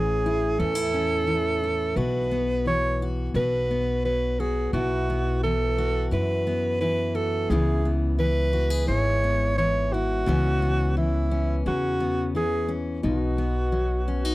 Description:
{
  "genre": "acoustic folk duo or small band",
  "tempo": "87 BPM",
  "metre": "4/4",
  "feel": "straight",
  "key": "unclear",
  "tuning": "A4 = 440 Hz",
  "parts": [
    { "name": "breathy alto saxophone", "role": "melody", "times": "0.0-14.3 s", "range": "E4 to C#5", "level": "-26 LUFS", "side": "right 2 dB", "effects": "none" },
    { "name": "fingerpicked steel-string acoustic guitar", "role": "accompaniment", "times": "0.0-14.3 s", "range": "F#2 to G#4", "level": "-28 LUFS", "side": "left 2 dB", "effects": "none" },
    { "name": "upright bass", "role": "bass", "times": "0.0-14.3 s", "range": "G#1 to F#2", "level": "-26 LUFS", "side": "equal", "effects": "transformer saturation" }
  ],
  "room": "little or no reverb",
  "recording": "dry, close 1970s-style studio recording",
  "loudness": "-22 LUFS",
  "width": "side -18 dB against mid",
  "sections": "0.0-14.3 A section",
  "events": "none",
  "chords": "0.0 A; 2.0 Bsus4; 3.4 B5; 4.7 Bsus4; 7.5 C#m7; 13.0 B"
}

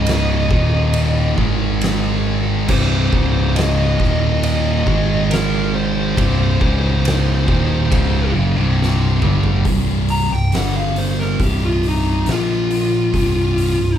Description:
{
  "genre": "stoner and doom metal",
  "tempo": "69 BPM",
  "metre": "4/4",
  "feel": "straight",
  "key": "C minor",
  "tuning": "A4 = 436 Hz",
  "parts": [
    { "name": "fuzz lead guitar", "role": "melody", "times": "0.0-14.0 s", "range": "Eb4 to Bb5", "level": "-22 LUFS", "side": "equal", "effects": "distortion" },
    { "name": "heavy high-gain guitar", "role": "riff", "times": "0.0-9.6 s", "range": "C2 to Ab3", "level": "-25 LUFS", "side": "equal", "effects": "distortion" },
    { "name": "thick fuzz guitar", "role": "riff", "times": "0.0-14.0 s", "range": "C2 to Bb3", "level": "-21 LUFS", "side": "left 6 dB", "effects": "distortion" },
    { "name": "thick fuzz guitar", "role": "riff", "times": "0.0-14.0 s", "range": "C2 to Bb3", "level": "-22 LUFS", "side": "right 7 dB", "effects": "distortion" },
    { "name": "picked electric bass", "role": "bass", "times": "0.0-14.0 s", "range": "C1 to Bb1", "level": "-21 LUFS", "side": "equal", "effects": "tube saturation" },
    { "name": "oversized low-tuned drum kit", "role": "drums", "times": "0.1-13.8 s", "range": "crash cymbal, hi-hat, kick drum, ride cymbal, snare drum, toms", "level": "-22 LUFS", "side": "equal", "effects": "none" }
  ],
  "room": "moderate large studio reverb, RT60 0.9 s",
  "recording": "band playing live in one room",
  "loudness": "-14 LUFS",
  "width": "side -10 dB against mid",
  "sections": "0.0-9.7 A section; 9.7-14.0 B section",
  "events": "drum fill 8.8-9.7; lead electric guitar solo 9.7-14.0",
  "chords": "0.0 Db5; 0.5 Eb5; 1.4 Ab5; 2.7 C5; 3.1 Db5; 4.0 Eb5; 4.9 Ab5; 6.2 C5; 6.6 Db5; 7.5 Cm; 9.7 C5; 10.5 G5; 11.4 Cm; 12.3 Bb5; 13.1 C5"
}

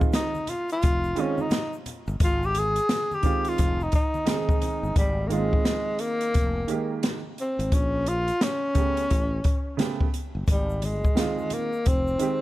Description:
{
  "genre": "hip hop, jazz-hop",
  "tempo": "87 BPM",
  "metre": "4/4",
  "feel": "swing 63% on 16ths",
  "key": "Ab major",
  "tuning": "A4 = 443 Hz",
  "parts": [
    { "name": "warm grand piano", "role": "accompaniment", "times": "0.0-12.4 s", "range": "Db3 to Ab4", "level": "-30 LUFS", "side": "right 7 dB", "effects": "none" },
    { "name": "sustaining fretless electric bass", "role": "bass", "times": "0.0-12.2 s", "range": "F1 to Bb1", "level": "-29 LUFS", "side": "equal", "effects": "none" },
    { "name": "open jazz drum kit", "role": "drums", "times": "0.0-12.4 s", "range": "hi-hat, kick drum, snare drum", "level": "-25 LUFS", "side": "equal", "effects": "none" },
    { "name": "egg shaker and congas", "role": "percussion", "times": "0.0-5.0, 10.5-12.4 s", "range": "none", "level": "-42 LUFS", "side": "left 4 dB", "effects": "none" },
    { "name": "breathy tenor saxophone", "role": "melody", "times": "0.1-12.4 s", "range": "G3 to Ab4", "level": "-27 LUFS", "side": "left 1 dB", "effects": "none" }
  ],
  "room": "little or no reverb",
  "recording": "none",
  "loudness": "-22 LUFS",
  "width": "side -16 dB against mid",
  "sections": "0.0-5.0 A section; 5.0-12.4 B section",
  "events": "tenor saxophone solo 0.0-5.0",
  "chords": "0.0 Ab6; 6.3 Fm11; 7.7 Bbm; 9.1 A9; 10.5 Ab6"
}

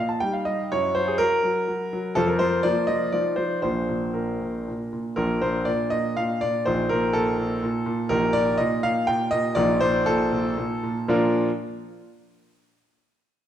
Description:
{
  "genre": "classical-period piano sonatina",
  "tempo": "112-126 BPM",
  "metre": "3/4",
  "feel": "rubato",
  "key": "Bb major",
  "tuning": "A4 = 440 Hz",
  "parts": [
    { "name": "warm grand piano", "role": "solo", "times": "0.0-11.5 s", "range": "Bb1 to A5", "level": "-21 LUFS", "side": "equal", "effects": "none" }
  ],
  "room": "moderate recital hall reverb, RT60 1.5 s",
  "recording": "none",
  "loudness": "-21 LUFS",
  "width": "side -10 dB against mid",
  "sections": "0.0-5.2 A section; 5.2-11.1 B section; 11.1-12.6 C section",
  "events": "none",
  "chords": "0.2 Eb/G; 0.7 Gb7; 2.1 F5; 2.6 Bb/F; 3.1 F5; 3.6 Bb; 6.7 F7/Bb; 8.1 Eb/Bb; 9.6 F7/Bb; 11.1 Bb"
}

